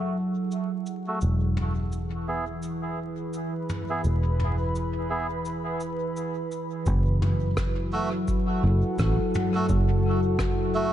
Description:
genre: ambient dub.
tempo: 85 BPM.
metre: 4/4.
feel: swing 60% on 16ths.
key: F# minor.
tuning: A4 = 440 Hz.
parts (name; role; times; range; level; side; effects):
warbly tape-like pad; sustained chords; 0.0-10.9 s; E3 to B5; -28 LUFS; equal; chorus, built-in reverb, vintage 12-bit sampler grit.
fingered electric bass; bass; 0.0-10.9 s; E1 to A1; -25 LUFS; equal; none.
soft brush drum kit; drums; 0.5-10.6 s; cabasa, rim click, toms; -34 LUFS; equal; low-pass filter on toms, low-pass filter on snare, low-pass filter on perc, low-pass filter on room, dub echo.
melodica; stabs; 1.1-10.9 s; A3 to E5; -33 LUFS; right 2 dB; low-pass filter, dub echo.
electronic kick drum; drums; 6.9-10.6 s; none; -30 LUFS; equal; none.
room: light reverb, small room ambience.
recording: vinyl crackle, nothing above 10.9 kHz.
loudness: -24 LUFS.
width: side -11 dB against mid.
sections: 0.0-6.9 A section; 6.9-10.9 B section.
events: filter sweep on drum 0.0-6.9.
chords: 0.0 F#m7; 1.2 E; 6.9 F#m7.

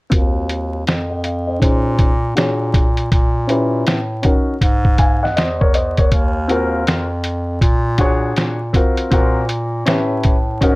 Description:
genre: hip hop, jazz-hop.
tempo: 80 BPM.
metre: 4/4.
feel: swing 63% on 16ths.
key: Eb dorian.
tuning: A4 = 440 Hz.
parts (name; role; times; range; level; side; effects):
dark upright piano; accompaniment; 0.1-10.8 s; C4 to Bb5; -19 LUFS; left 1 dB; low-pass filter.
clear bass clarinet; bass; 0.1-10.8 s; Eb2 to Bb2; -20 LUFS; equal; none.
lo-fi sampler-style drum kit; drums; 0.1-10.8 s; hi-hat, kick drum, snare drum; -16 LUFS; equal; none.
room: light reverb.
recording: vinyl crackle.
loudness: -14 LUFS.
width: side -22 dB against mid.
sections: 0.1-10.8 A section.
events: filter sweep on upright piano 0.1-10.8.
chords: 0.1 Ebm69; 1.6 Bbm11; 2.4 Bb7alt; 3.1 Bbdim7; 3.9 A; 4.6 Emaj7#11; 6.1 Ebm69; 7.6 Bbm7; 8.4 Bb7alt; 9.1 Gbmaj7#11/Bb; 9.9 A9.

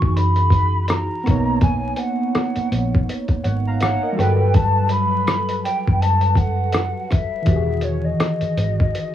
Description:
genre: lo-fi hip hop.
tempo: 82 BPM.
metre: 4/4.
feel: swing 58% on 16ths.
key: unclear.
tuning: A4 = 440 Hz.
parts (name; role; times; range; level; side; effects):
breathy mellow jazz flute; melody; 0.0-9.1 s; C#5 to C#6; -23 LUFS; equal; low-pass filter, analog delay, plate reverb.
warbly lo-fi synth keys; accompaniment; 0.0-9.1 s; D#3 to A#5; -24 LUFS; equal; chorus, phaser, low-pass filter, cassette tape, plate reverb.
vintage muted fingered electric bass; bass; 0.0-8.9 s; E1 to B1; -21 LUFS; equal; none.
lo-fi sampler-style drum kit; drums; 0.0-9.1 s; hi-hat, kick drum, rim click; -20 LUFS; equal; vintage 12-bit sampler grit, cassette tape.
room: light reverb.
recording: home recording on cassette, vinyl crackle.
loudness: -17 LUFS.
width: side -11 dB against mid.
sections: 0.0-9.1 A section.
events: none.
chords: 0.0 Emaj9; 1.2 Bmaj9; 4.2 Gmaj9; 7.5 Emaj9.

